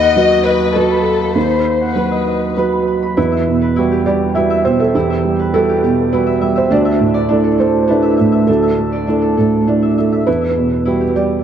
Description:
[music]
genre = neoclassical piano and strings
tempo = 101 BPM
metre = 3/4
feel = rubato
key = E minor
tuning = A4 = 440 Hz
[part]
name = warm chamber violin section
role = melody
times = 0.0-2.6 s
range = A4 to D#5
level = -16 LUFS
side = left 7 dB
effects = dub echo
[part]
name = felt-muted upright piano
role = accompaniment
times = 0.0-11.4 s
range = D2 to E5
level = -13 LUFS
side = right 3 dB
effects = dub echo
[part]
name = Celtic harp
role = arpeggios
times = 0.0-11.4 s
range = D4 to B5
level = -20 LUFS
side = left 3 dB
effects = dub echo
[sound]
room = moderate plate reverb, RT60 2.5 s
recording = echo-heavy mix, cassette tape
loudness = -12 LUFS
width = side -9 dB against mid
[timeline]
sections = 0.0-3.2 A section; 3.2-11.4 B section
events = none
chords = 0.0 B/D#; 3.2 Emadd9; 6.7 Dsus2; 10.3 Emadd9

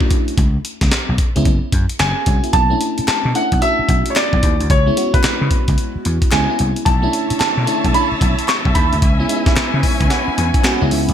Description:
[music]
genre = R&B, new jack swing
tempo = 111 BPM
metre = 4/4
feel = swing 63% on 16ths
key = B dorian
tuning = A4 = 441 Hz
[part]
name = FM electric piano with soft pad layer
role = accompaniment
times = 0.0-11.1 s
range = G#3 to B5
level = -22 LUFS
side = equal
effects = chorus
[part]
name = breakbeat sampler-style drum kit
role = drums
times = 0.0-11.1 s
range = handclaps, hi-hat, kick drum, snare drum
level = -17 LUFS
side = equal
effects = gated reverb
[part]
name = vintage slap bass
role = bass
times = 0.4-11.1 s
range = F#1 to C#3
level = -18 LUFS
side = equal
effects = none
[part]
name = clear baby grand piano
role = melody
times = 2.0-10.6 s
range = B4 to C#6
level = -20 LUFS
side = right 1 dB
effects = wide subtle chorus
[part]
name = group handclap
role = percussion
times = 3.1-10.8 s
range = none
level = -32 LUFS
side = left 6 dB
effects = none
[part]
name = warm studio string section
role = sustained chords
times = 6.9-11.1 s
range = D3 to A5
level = -22 LUFS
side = left 2 dB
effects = none
[sound]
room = light reverb, small room ambience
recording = bright 1980s-style digital production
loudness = -14 LUFS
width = side -9 dB against mid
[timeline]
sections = 0.0-2.5 A section; 2.5-11.1 B section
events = FM electric piano fill 9.6-11.1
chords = 0.4 C#7(no3); 1.5 F#sus2; 2.5 Bm11; 4.7 C#m7; 6.9 Bm11; 9.0 C#m7

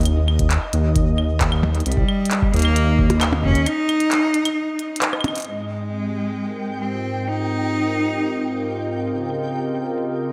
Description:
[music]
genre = IDM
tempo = 133 BPM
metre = 4/4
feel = straight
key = unclear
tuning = A4 = 439 Hz
[part]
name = dark detuned saw bass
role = bass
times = 0.0-3.7 s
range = C2 to Eb2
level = -20 LUFS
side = equal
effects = none
[part]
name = glitchy drum kit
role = drums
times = 0.0-10.1 s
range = claves, handclaps, hi-hat, percussion blips, rim click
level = -27 LUFS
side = equal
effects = low-pass filter on snare, studio reverb, low-pass filter on hats, low-pass filter on perc, diffuse ambient delay
[part]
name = flickering grainy texture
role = texture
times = 0.0-10.3 s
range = Eb5 to G5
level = -35 LUFS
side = equal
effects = built-in reverb, subtle chorus
[part]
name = electronic kick drum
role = drums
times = 0.4-3.5 s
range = none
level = -24 LUFS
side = equal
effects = overdrive, studio reverb
[part]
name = bright cello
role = melody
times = 1.9-8.9 s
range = G3 to Eb4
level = -25 LUFS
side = equal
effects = diffuse ambient delay
[part]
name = hollow soft pad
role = sustained chords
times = 5.5-10.3 s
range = Ab2 to Eb5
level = -27 LUFS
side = equal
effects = chorus, vintage 12-bit sampler grit
[sound]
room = wet plate reverb, RT60 1.6 s, digital ambience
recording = dreamy mix soaked in reverb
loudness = -21 LUFS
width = mono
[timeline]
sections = 0.0-5.5 A section; 5.5-10.3 B section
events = break 3.7-5.5; drum fill 5.0-5.5; filter sweep on analog synth pad 5.5-10.3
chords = 0.0 N.C.; 5.5 Ab6; 9.1 Dbadd9

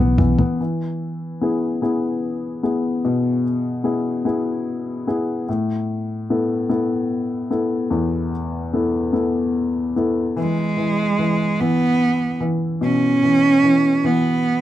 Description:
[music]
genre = acoustic folk-pop ballad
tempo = 49 BPM (dotted quarters)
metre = 6/8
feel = straight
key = E major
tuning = A4 = 440 Hz
[part]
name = warm upright piano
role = accompaniment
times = 0.0-14.6 s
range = E2 to A4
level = -20 LUFS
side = left 2 dB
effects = none
[part]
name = toms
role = drums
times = 0.2-0.6 s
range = none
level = -18 LUFS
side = equal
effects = none
[part]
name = bright cello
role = melody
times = 10.4-14.6 s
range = G#3 to C#4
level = -17 LUFS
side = right 2 dB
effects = none
[sound]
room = light reverb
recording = dry, close 1970s-style studio recording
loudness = -18 LUFS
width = side -13 dB against mid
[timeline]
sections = 0.6-10.4 A section; 10.4-14.6 B section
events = drum fill 0.0-0.6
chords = 0.0 E5; 0.6 E; 5.5 Asus2; 10.4 E

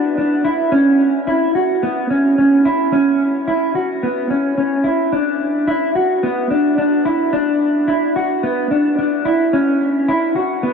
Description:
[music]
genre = dream pop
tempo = 109 BPM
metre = 4/4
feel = straight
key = B minor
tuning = A4 = 441 Hz
[part]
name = mellow electric guitar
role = solo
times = 0.0-10.7 s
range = B3 to F#4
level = -14 LUFS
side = equal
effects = lush chorus, ping-pong delay
[sound]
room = wet huge ambient reverb, RT60 7.9 s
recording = dark, warm production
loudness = -14 LUFS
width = side -6 dB against mid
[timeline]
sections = 0.0-10.7 A section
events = none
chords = none

